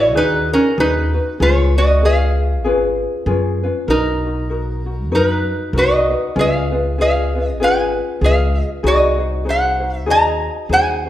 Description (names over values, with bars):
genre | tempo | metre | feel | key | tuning
Hawaiian | 97 BPM | 4/4 | swing 58% on 8ths | unclear | A4 = 440 Hz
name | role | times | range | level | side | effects
lap resonator guitar | melody | 0.0-11.1 s | C#4 to A#5 | -17 LUFS | right 1 dB | none
ukulele | accompaniment | 0.0-11.1 s | C#4 to B#4 | -21 LUFS | left 3 dB | none
upright bass | bass | 0.0-11.1 s | G#1 to F#2 | -19 LUFS | equal | none
room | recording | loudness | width
moderate recital hall reverb, RT60 1.4 s | recorded in a church or concert hall | -14 LUFS | side -12 dB against mid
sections
0.0-11.1 A section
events
none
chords
0.0 G#m7; 1.4 C#7; 3.9 Bmaj7; 6.4 C#7; 8.8 G#7/B#